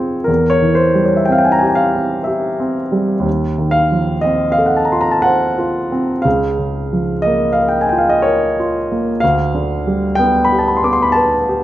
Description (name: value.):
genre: classical, romantic nocturne for solo piano.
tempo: 61 BPM.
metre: 3/4.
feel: rubato.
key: unclear.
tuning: A4 = 438 Hz.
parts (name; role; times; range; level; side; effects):
warm grand piano; solo; 0.0-11.6 s; Db2 to D6; -13 LUFS; equal; none.
room: moderate recital hall reverb, RT60 1.3 s.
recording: close, detailed microphones.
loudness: -13 LUFS.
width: side -13 dB against mid.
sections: 0.0-11.6 A section.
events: none.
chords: 0.3 C/E; 3.3 F7/Eb; 6.3 Bbm/Db; 9.2 G7/D.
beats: | 0.28 1.30 2.28 | 3.26 4.25 5.26 | 6.25 7.26 8.24 | 9.22 10.18 11.16.